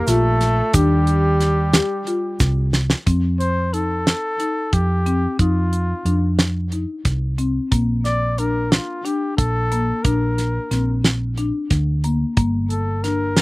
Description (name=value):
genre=progressive instrumental, band music in an uneven meter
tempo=181 BPM (eighths)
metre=7/8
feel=straight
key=F mixolydian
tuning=A4 = 443 Hz
part: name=breathy trumpet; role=melody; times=0.0-13.4 s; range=F4 to D5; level=-24 LUFS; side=left 1 dB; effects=none
part: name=breathy alto saxophone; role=second line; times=0.0-2.7 s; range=G3 to A3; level=-25 LUFS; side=right 2 dB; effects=none
part: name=marimba with medium mallets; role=arpeggios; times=0.1-13.4 s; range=Bb3 to G4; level=-24 LUFS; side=left 3 dB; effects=none
part: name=hollow-body short-scale fingered electric bass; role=bass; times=0.1-13.4 s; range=G1 to F2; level=-20 LUFS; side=equal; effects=none
part: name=damped 70s drum kit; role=drums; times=0.1-13.4 s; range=hi-hat, kick drum, snare drum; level=-19 LUFS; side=right 1 dB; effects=none
part: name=tube shaker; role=percussion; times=0.1-2.9 s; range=none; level=-32 LUFS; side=right 4 dB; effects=none
room=little or no reverb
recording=recorded outdoors, with no room sound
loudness=-17 LUFS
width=side -21 dB against mid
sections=0.0-3.1 A section; 3.1-13.4 B section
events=drum fill 2.4-3.1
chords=0.0 Fsus4; 0.7 Ebmaj7; 3.1 F7; 7.7 Bb; 12.4 Gm